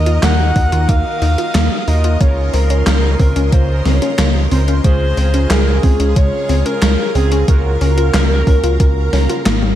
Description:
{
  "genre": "synthwave",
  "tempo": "91 BPM",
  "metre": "4/4",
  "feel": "straight",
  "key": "Bb minor",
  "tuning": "A4 = 440 Hz",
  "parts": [
    { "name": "mellow alto saxophone", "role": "melody", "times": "0.0-9.4 s", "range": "Ab4 to Gb5", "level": "-21 LUFS", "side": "left 1 dB", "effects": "ping-pong delay" },
    { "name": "string machine, full ensemble", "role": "sustained chords", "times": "0.0-9.8 s", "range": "Ab4 to Eb6", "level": "-26 LUFS", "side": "equal", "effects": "ensemble chorus, sidechain pumping" },
    { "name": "analog synth brass", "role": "stabs", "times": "0.0-9.4 s", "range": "Db3 to C5", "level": "-24 LUFS", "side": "right 4 dB", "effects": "chorus, ping-pong delay" },
    { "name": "round analog bass", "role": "bass", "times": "0.0-9.8 s", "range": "Ab1 to Eb2", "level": "-14 LUFS", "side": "equal", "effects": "none" },
    { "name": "warbly dusty pluck", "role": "arpeggios", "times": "0.1-9.6 s", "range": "Ab3 to F4", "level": "-22 LUFS", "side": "left 2 dB", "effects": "chorus, ping-pong delay" },
    { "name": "gated 80s digital drum machine", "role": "drums", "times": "0.1-9.8 s", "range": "handclaps, hi-hat, snare drum, toms", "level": "-19 LUFS", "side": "left 1 dB", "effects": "gated reverb, gated reverb snare, overdrive" },
    { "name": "electronic kick drum", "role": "drums", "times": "0.6-8.9 s", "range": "none", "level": "-14 LUFS", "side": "equal", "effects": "overdrive" }
  ],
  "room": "light reverb",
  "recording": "dark, warm production",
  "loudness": "-12 LUFS",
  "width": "side -12 dB against mid",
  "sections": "0.0-9.8 A section",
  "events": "drum fill 9.5",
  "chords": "0.0 Ebmadd9; 2.2 Bbmadd9/Db; 4.8 Dbmaj7; 7.5 Gbmaj7/Db",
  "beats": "0.23 0.89 1.55 | 2.21 2.87 3.53 4.18 | 4.84 5.50 6.16 6.82 | 7.48 8.14 8.80 9.46"
}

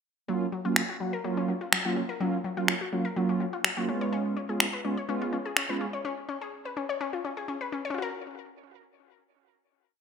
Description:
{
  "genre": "dance-pop",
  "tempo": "125 BPM",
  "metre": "4/4",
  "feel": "straight",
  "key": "F# major",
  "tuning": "A4 = 439 Hz",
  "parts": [
    { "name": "mellow synth brass", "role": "accompaniment", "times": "0.3-5.9 s", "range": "F#3 to F#4", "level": "-30 LUFS", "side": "right 3 dB", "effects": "chorus" },
    { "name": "wide unison pluck", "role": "arpeggios", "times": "0.3-10.0 s", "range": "F#3 to C#5", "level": "-34 LUFS", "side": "left 5 dB", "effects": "ping-pong delay" },
    { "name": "electronic finger snaps", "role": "drums", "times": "0.8-5.7 s", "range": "none", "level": "-25 LUFS", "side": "equal", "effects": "gated reverb" }
  ],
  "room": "moderate plate reverb, RT60 1.4 s, digital ambience",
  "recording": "bright 1980s-style digital production",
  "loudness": "-27 LUFS",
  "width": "side -7 dB against mid",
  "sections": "0.3-8.0 verse; 8.0-10.0 final chord",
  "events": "none",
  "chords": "0.3 F#maj7; 3.9 C#7; 8.0 F#maj7",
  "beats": "| 0.29 0.77 1.25 1.73 | 2.21 2.69 3.17 3.65 | 4.13 4.61 5.09 5.57 | 6.05 6.53 7.01 7.49 | 7.97 8.45 8.93 9.41 | 9.89"
}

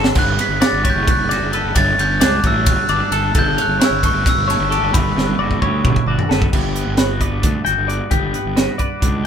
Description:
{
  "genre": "math rock and midwest emo",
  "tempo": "264 BPM (eighths)",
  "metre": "7/8",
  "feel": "straight",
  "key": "G lydian",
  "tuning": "A4 = 440 Hz",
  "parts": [
    { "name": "twelve-string electric guitar", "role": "accompaniment", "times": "0.0-9.3 s", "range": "G2 to B4", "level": "-25 LUFS", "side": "right 7 dB", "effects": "none" },
    { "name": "twelve-string electric guitar", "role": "arpeggios", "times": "0.0-9.2 s", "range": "G4 to G5", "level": "-23 LUFS", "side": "left 7 dB", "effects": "none" },
    { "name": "fuzz fingered electric bass", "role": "bass", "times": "0.0-9.2 s", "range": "F#1 to D2", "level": "-21 LUFS", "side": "equal", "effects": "overdrive" },
    { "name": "crisp fusion drum kit", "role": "drums", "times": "0.0-9.1 s", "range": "crash cymbal, hi-hat, kick drum, ride cymbal, snare drum, toms", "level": "-18 LUFS", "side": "right 1 dB", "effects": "none" },
    { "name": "glockenspiel with soft plastic mallets", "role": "melody", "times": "0.2-6.0 s", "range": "A5 to B6", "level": "-20 LUFS", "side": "equal", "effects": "none" }
  ],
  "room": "light reverb",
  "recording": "band playing live in one room",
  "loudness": "-14 LUFS",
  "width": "side -8 dB against mid",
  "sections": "0.0-6.5 A section; 6.5-9.3 B section",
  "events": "drum fill 0.0, 5.2-6.5",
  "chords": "0.2 Gmaj7; 1.8 Dmaj7/G; 3.3 A7/G; 4.9 Gmaj7",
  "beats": "| 0.16 0.39 0.62 0.85 1.07 1.30 1.53 | 1.75 1.98 2.21 2.44 2.66 2.89 3.12 | 3.35 3.57 3.80 4.03 4.25 4.48 4.71 | 4.94 5.16 5.39 5.62 5.84 6.07 6.30 | 6.53 6.75 6.98 7.21 7.44 7.67 7.89 | 8.12 8.35 8.58 8.80 9.03 9.26"
}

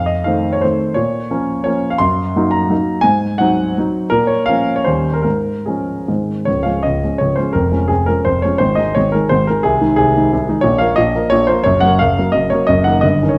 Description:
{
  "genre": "classical, romantic triple-time dance for piano with dotted rhythms",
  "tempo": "137-193 BPM",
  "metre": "3/4",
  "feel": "rubato",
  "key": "Db major",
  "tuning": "A4 = 440 Hz",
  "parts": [
    { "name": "warm grand piano", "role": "solo", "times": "0.0-13.4 s", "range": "Db1 to C6", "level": "-15 LUFS", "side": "equal", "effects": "none" }
  ],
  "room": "moderate recital hall reverb, RT60 1.4 s",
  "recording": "none",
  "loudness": "-16 LUFS",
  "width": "mono",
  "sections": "0.0-6.5 A section; 6.5-13.4 B section",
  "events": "none",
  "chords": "0.0 F7; 1.0 Bbm; 2.0 Ebm/Gb; 3.0 Ab7; 4.1 Bbm; 4.9 Eb7; 5.2 Db/Ab; 6.1 Ab; 6.5 Db; 7.5 Db/F; 8.6 Ab5; 9.6 Ab/C; 10.6 Bb5; 11.6 Gb; 12.7 Ebm/Gb",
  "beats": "0.26 0.63 | 0.97 1.31 1.67 | 2.01 2.36 2.71 | 3.04 3.40 3.77 | 4.11 4.48 4.87 | 5.25 5.67 6.09 | 6.47 6.84 7.20 | 7.55 7.90 8.26 | 8.60 8.96 9.32 | 9.64 9.98 10.32 | 10.64 10.97 11.31 | 11.65 11.99 12.34 | 12.68 13.03"
}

